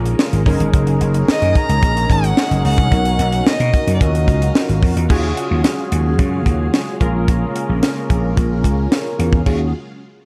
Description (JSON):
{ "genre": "early-eighties boogie funk", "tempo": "110 BPM", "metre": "4/4", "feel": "straight", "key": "Eb minor", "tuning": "A4 = 440 Hz", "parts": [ { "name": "funky polysynth comp", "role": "accompaniment", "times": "0.0-9.7 s", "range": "Db4 to Bb4", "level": "-25 LUFS", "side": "equal", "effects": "chorus" }, { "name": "phased string machine", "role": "sustained chords", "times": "0.0-9.7 s", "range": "Db3 to F5", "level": "-32 LUFS", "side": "equal", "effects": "none" }, { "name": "vintage slap bass", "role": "bass", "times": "0.0-9.7 s", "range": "Gb1 to B2", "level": "-19 LUFS", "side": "equal", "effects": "none" }, { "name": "tight funk drum kit", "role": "drums", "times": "0.1-9.6 s", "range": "crash cymbal, hi-hat, kick drum, snare drum", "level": "-20 LUFS", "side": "equal", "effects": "none" }, { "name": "rich violin", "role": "melody", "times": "1.3-4.8 s", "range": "D5 to Bb5", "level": "-23 LUFS", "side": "equal", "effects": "slapback echo" } ], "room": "small room ambience", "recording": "dark, warm production", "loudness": "-16 LUFS", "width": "mono", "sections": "0.0-5.1 A section; 5.1-9.5 B section", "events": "none", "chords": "0.5 Gb69; 2.9 Bmaj9; 4.0 Ebm9; 5.1 Ebm11; 7.0 Bbm7; 9.5 Ebm11", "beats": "0.19 | 0.73 1.28 1.82 2.37 | 2.92 3.46 4.01 4.55 | 5.10 5.64 6.19 6.73 | 7.28 7.83 8.37 8.92 | 9.46" }